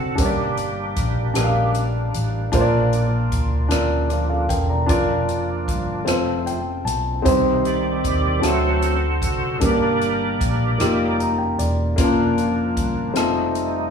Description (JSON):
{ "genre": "slow gospel", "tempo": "51 BPM (dotted quarters)", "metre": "6/8", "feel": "straight", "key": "Bb major", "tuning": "A4 = 439 Hz", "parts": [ { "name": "warm upright piano", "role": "accompaniment", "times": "0.0-13.9 s", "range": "G2 to Bb5", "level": "-21 LUFS", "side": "left 1 dB", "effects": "none" }, { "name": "bright tonewheel organ", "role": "sustained chords", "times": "0.0-13.9 s", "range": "Eb3 to D5", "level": "-25 LUFS", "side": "right 2 dB", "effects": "fast rotary speaker, overdrive, chorus vibrato" }, { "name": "fingered electric bass", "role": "bass", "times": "0.0-13.9 s", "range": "E1 to Eb2", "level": "-24 LUFS", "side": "equal", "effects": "none" }, { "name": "swinging big-band drum kit", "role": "drums", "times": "0.2-13.7 s", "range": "hi-hat, kick drum, rim click", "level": "-26 LUFS", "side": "equal", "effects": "none" } ], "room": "moderate large studio reverb, RT60 1.0 s", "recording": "band playing live in one room, small room ambience", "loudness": "-18 LUFS", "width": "side -6 dB against mid", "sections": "0.0-13.9 A section", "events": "tonewheel organ solo 0.0-13.9; upright piano fill 6.1-7.3, 10.8-12.0", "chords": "0.2 Gm; 2.5 Bb; 4.9 Bb/F; 6.1 F; 7.3 Cm; 8.4 D7; 9.6 Gm; 10.8 F9sus4; 12.0 Bb/F; 13.2 F7" }